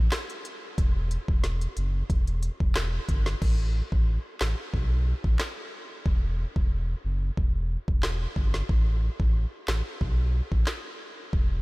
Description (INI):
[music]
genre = dancehall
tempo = 91 BPM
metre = 4/4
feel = straight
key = unclear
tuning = A4 = 440 Hz
[part]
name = sub bass with octave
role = bass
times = 0.0-11.6 s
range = E1 to B1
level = -27 LUFS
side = equal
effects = none
[part]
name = island pop drum kit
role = drums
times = 0.1-11.5 s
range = crash cymbal, handclaps, hi-hat, kick drum, rim click, snare drum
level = -27 LUFS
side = equal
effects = none
[sound]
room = little or no reverb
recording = none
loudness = -24 LUFS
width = side -23 dB against mid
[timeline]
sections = 0.0-3.4 A section; 3.4-11.6 B section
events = none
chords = none